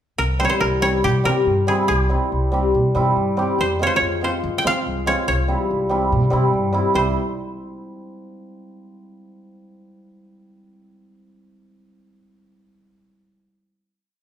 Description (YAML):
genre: klezmer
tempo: 142 BPM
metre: 4/4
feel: straight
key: C phrygian dominant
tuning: A4 = 438 Hz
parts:
  - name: koto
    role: melody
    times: 0.2-7.1 s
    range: G4 to G5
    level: -22 LUFS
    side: right 1 dB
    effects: none
  - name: upright bass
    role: bass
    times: 0.2-7.1 s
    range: C2 to F3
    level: -22 LUFS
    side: equal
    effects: none
  - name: cimbalom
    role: accompaniment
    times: 0.4-7.1 s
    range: G3 to G4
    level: -21 LUFS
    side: equal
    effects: none
room: wet large studio reverb, RT60 1.1 s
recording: band playing live in one room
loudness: -17 LUFS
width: side -10 dB against mid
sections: 0.2-6.9 A section; 6.9-8.6 final chord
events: none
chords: 0.2 C; 3.6 Fm; 5.3 C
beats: | 0.19 0.62 1.04 1.47 | 1.89 2.32 2.75 3.17 | 3.59 4.02 4.44 4.86 | 5.28 5.70 6.11 6.53 | 6.95